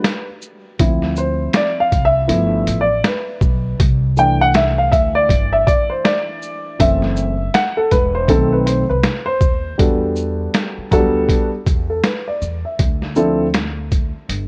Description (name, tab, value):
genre	hip hop, jazz-hop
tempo	80 BPM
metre	4/4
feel	swing 61% on 16ths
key	E minor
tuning	A4 = 441 Hz
part	dark baby grand piano	accompaniment	0.0-13.5 s	D#3 to G5	-19 LUFS	equal	none
part	boom bap sampler-style drum kit	drums	0.0-14.5 s	hi-hat, kick drum, shaker, snare drum	-20 LUFS	equal	none
part	upright bass	bass	0.8-14.5 s	E1 to E2	-24 LUFS	equal	none
room	little or no reverb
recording	worn, warbling old tape, cassette tape, warbly pitch drift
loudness	-17 LUFS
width	mono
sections	0.0-9.8 A section; 9.8-14.5 B section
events	grand piano solo 0.0-9.8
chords	0.0 Em (rootless); 0.8 Dm9; 2.3 G13; 3.8 C6; 6.8 F#m7b5; 8.3 B7b9; 9.8 Em11; 12.8 Dm9